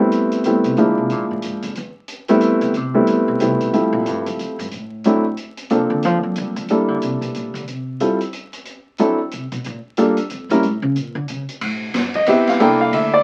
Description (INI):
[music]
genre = jazz piano trio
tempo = 183 BPM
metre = 3/4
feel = swing 62% on 8ths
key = A minor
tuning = A4 = 438 Hz
[part]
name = warm baby grand piano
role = melody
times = 0.0-13.2 s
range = F3 to G5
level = -18 LUFS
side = equal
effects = none
[part]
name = open jazz drum kit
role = drums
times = 0.1-13.0 s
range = hi-hat, kick drum, ride cymbal, snare drum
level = -32 LUFS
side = equal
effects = none
[part]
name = upright bass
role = bass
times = 0.5-13.2 s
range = C2 to G3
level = -28 LUFS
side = equal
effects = none
[sound]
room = moderate studio reverb, RT60 0.5 s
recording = very old 78 rpm record, vinyl crackle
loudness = -19 LUFS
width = mono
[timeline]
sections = 0.0-3.7 A section; 3.7-11.6 A section; 11.6-13.2 A section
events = upright bass solo 0.0-11.6; grand piano solo 11.6-13.2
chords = 0.0 Am9; 0.8 Bb7#11; 1.8 Am7; 3.7 Fmaj9; 4.7 N.C.; 5.7 Gm11; 6.7 C13; 7.7 N.C.; 9.6 Gm7; 10.6 A; 11.6 Am7; 12.6 C13